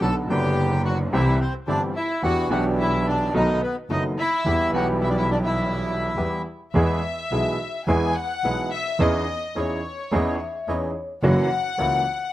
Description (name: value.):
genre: tango.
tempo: 107 BPM.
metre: 4/4.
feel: rubato.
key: E minor, E major from 6.7 s.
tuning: A4 = 440 Hz.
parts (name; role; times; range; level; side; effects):
bandoneon; melody; 0.0-6.4 s; B3 to A5; -26 LUFS; equal; none.
warm chamber violin section; second line; 0.0-12.3 s; B3 to G#5; -28 LUFS; left 4 dB; slapback echo.
clear upright piano; accompaniment; 0.0-12.0 s; F#1 to G#4; -25 LUFS; equal; slapback echo.
bandoneon; stabs; 0.0-12.0 s; D3 to F#4; -33 LUFS; right 2 dB; none.
warm double bass; bass; 0.0-12.0 s; F#1 to E2; -25 LUFS; right 1 dB; none.
vibraphone with soft mallets; second line; 10.1-11.1 s; C#5 to E5; -31 LUFS; left 4 dB; none.
room: little or no reverb.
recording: recorded outdoors, with no room sound.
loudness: -20 LUFS.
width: side -14 dB against mid.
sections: 0.0-6.7 A section; 6.7-12.3 B section.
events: violin section solo 6.7-12.3.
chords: 0.0 Bm; 1.1 C; 2.2 Em7; 3.3 B7; 4.5 Em; 6.7 E; 9.0 C#madd9/E; 11.2 F#7.